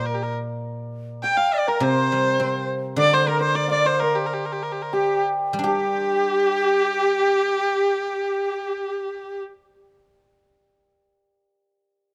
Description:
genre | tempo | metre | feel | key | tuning
chinese traditional, Chinese chamber ensemble | 70-104 BPM | 2/4 | rubato | G yu mode | A4 = 444 Hz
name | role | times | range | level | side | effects
rich erhu | melody | 0.0-9.4 s | G4 to G5 | -26 LUFS | equal | none
hammered dulcimer | second line | 0.0-9.4 s | G4 to Bb5 | -30 LUFS | equal | none
guzheng | accompaniment | 0.0-11.6 s | Bb2 to G4 | -30 LUFS | equal | none
bright large dizi | second line | 1.2-9.4 s | G4 to G5 | -26 LUFS | equal | none
room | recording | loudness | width
light reverb | close, detailed microphones | -22 LUFS | mono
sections
0.0-5.6 A section; 5.6-9.0 B section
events
slowing down 3.0-5.6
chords
none

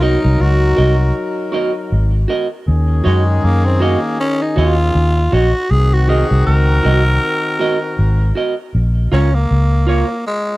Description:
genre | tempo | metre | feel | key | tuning
reggae | 79 BPM | 4/4 | swing 58% on 16ths | unclear | A4 = 440 Hz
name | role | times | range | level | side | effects
growling tenor saxophone | melody | 0.0-10.6 s | Ab3 to Bb4 | -19 LUFS | equal | none
clear horn section | second line | 0.0-8.3 s | Eb3 to Bb4 | -22 LUFS | left 2 dB | none
clean electric guitar | accompaniment | 0.0-10.1 s | F4 to Eb5 | -21 LUFS | right 3 dB | spring reverb
vintage muted fingered electric bass | bass | 0.0-10.0 s | Ab1 to Gb2 | -13 LUFS | equal | none
room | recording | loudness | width
little or no reverb | dry, close 1970s-style studio recording | -12 LUFS | side -18 dB against mid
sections
0.0-8.7 A section; 8.7-10.6 B section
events
tenor saxophone solo 8.7-10.6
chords
0.0 Cm7b5; 2.7 Ebm7; 5.7 Cm7b5; 8.7 Bbm

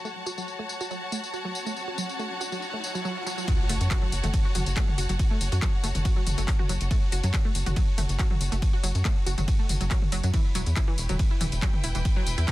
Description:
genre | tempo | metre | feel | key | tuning
driving peak-time techno | 140 BPM | 4/4 | straight | F# phrygian | A4 = 440 Hz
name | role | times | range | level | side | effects
wide unison pluck | riff | 0.0-12.5 s | E3 to F#4 | -35 LUFS | right 1 dB | sidechain pumping, digital delay
downlifter, riser and impact | sound effects | 1.6-5.2 s | none | -39 LUFS | equal | none
rich studio string section | texture | 0.0-12.5 s | E4 to A5 | -35 LUFS | left 1 dB | sidechain pumping
techno drum kit | drums | 0.1-12.5 s | handclaps, hi-hat, ride cymbal, tambourine, toms | -33 LUFS | left 1 dB | low-pass filter on hats, low-pass filter on perc, low-pass filter on snare, low-pass filter on cymbals, low-pass filter on toms, low-pass filter on room
electronic kick drum | drums | 3.5-12.5 s | none | -25 LUFS | equal | none
tight sequencer bass | bass | 3.7-12.5 s | E1 to F#2 | -26 LUFS | equal | sidechain pumping
room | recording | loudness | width
digital ambience | none | -24 LUFS | side -17 dB against mid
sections
0.0-3.5 A section; 3.5-12.5 B section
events
filter sweep on synth arpeggio sound 0.0-3.5; riser 1.6-3.5; drop 3.5-12.5; impact 3.5-5.2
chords
0.0 F#m; 10.3 Em

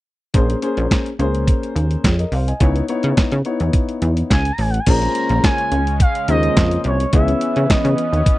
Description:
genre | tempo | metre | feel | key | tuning
early-eighties boogie funk | 106 BPM | 4/4 | straight | Bb phrygian | A4 = 440 Hz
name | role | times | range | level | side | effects
warm concert grand piano | accompaniment | 0.3-8.0 s | Bb3 to Ab5 | -22 LUFS | left 3 dB | none
plucky analog bass | bass | 0.3-8.2 s | A1 to Db3 | -18 LUFS | equal | none
crisp 8-bit digital drum machine | drums | 0.3-8.4 s | crash cymbal, handclaps, hi-hat, kick drum, snare drum | -16 LUFS | equal | none
expressive portamento lead | melody | 4.3-8.4 s | Db5 to Bb5 | -21 LUFS | right 1 dB | chorus, slapback echo
warm analog pad | sustained chords | 4.9-8.4 s | Db3 to Db4 | -26 LUFS | left 1 dB | chorus, tremolo
room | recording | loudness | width
little or no reverb | dry, close 1970s-style studio recording | -15 LUFS | side -17 dB against mid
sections
0.3-4.9 A section; 4.9-8.4 B section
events
none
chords
0.3 Bbm9; 2.6 Dbm9; 4.9 Bbm9; 7.1 Dbm9

